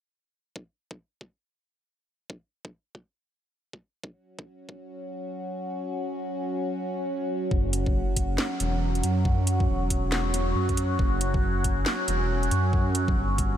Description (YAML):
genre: deep dubstep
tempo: 138 BPM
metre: 4/4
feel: swing 62% on 16ths, half-time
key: unclear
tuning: A4 = 440 Hz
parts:
  - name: electronic kick drum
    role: drums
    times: 0.6-4.8, 7.5-13.5 s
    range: none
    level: -27 LUFS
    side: equal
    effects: high-pass filter on kick
  - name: overtone-sweeping drone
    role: sustained chords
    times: 4.8-13.6 s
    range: F#3 to F#4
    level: -29 LUFS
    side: right 1 dB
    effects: chorus, built-in reverb
  - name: dark detuned saw bass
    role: bass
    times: 7.5-13.6 s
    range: E1 to F#2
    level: -26 LUFS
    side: equal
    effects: tube saturation
  - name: garage drum kit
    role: drums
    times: 7.7-13.5 s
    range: hi-hat, snare drum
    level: -32 LUFS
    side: equal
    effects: low-pass filter on hats, low-pass filter on snare
room: light reverb, digital ambience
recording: none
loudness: -24 LUFS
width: side -10 dB against mid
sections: 0.6-7.5 A section; 7.5-13.6 B section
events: none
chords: 0.6 F#5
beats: | 0.56 0.99 1.43 1.86 | 2.30 2.73 3.17 3.60 | 4.04 4.47 4.91 5.34 | 5.78 6.21 6.64 7.08 | 7.51 7.95 8.38 8.82 | 9.25 9.69 10.12 10.56 | 10.99 11.43 11.86 12.30 | 12.73 13.17